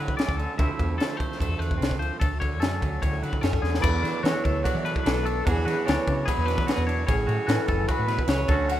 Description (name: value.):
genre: math rock and midwest emo.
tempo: 148 BPM.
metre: 4/4.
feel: straight.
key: unclear.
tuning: A4 = 437 Hz.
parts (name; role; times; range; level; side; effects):
twangy electric guitar; accompaniment; 0.0-8.8 s; D2 to F#4; -31 LUFS; right 5 dB; none.
twangy electric guitar; arpeggios; 0.0-8.8 s; D4 to E5; -32 LUFS; left 5 dB; tremolo.
woody fretless electric bass; bass; 0.0-8.8 s; F#1 to E3; -27 LUFS; equal; ensemble chorus.
crisp fusion drum kit; drums; 0.1-8.8 s; crash cymbal, kick drum, ride cymbal, snare drum; -27 LUFS; equal; none.
electric guitar through a small old amp; melody; 3.4-8.8 s; G#4 to F#5; -29 LUFS; left 1 dB; spring reverb.
room: light reverb.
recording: rough home demo mix.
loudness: -22 LUFS.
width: side -12 dB against mid.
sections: 0.0-3.8 A section; 3.8-8.8 B section.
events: drum fill 3.6.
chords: 0.0 Dmaj7; 0.6 Fmaj7/D; 2.2 Dmaj7; 3.8 E9sus4; 5.5 E9; 7.1 A69.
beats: 0.18 | 0.58 0.99 1.40 1.81 | 2.21 2.62 3.02 3.43 | 3.84 4.24 4.65 5.05 | 5.46 5.86 6.27 6.67 | 7.08 7.48 7.89 8.29 | 8.69.